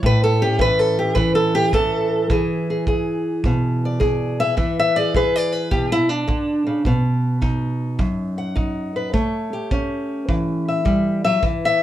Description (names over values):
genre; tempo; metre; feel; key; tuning
acoustic country blues, solo or duo; 105 BPM; 4/4; swing 68% on 8ths; unclear; A4 = 443 Hz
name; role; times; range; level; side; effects
fingerpicked steel-string acoustic guitar; melody; 0.0-11.8 s; F#2 to F#5; -18 LUFS; equal; none
kick drum; drums; 0.0-11.6 s; none; -23 LUFS; right 1 dB; none
room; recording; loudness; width
wet studio reverb, RT60 0.5 s; heard from further back in the room; -17 LUFS; side -12 dB against mid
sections
0.0-11.8 A section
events
steel-string acoustic guitar solo 0.0-11.8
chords
0.0 A; 2.3 E7; 6.9 B; 9.1 A7